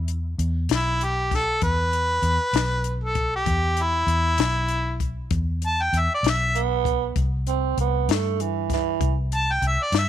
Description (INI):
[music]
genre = slow blues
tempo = 65 BPM (dotted quarters)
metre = 12/8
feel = straight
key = E minor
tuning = A4 = 440 Hz
[part]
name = growling tenor saxophone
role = second line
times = 0.0-0.1, 6.6-9.2 s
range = E3 to C4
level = -25 LUFS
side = right 14 dB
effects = none
[part]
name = vintage muted fingered electric bass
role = bass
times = 0.0-10.1 s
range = B1 to G2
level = -25 LUFS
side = equal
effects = none
[part]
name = compact cocktail drum kit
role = drums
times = 0.1-10.1 s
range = hi-hat, kick drum, snare drum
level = -26 LUFS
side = left 6 dB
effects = none
[part]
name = bright harmonica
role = melody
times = 0.8-10.1 s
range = E4 to A5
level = -23 LUFS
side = equal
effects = overdrive
[sound]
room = small room ambience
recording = 1960s-style stereo with parts hard left and right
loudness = -21 LUFS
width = side -10 dB against mid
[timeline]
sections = 0.0-10.1 A section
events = none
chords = 0.0 E5; 7.2 C5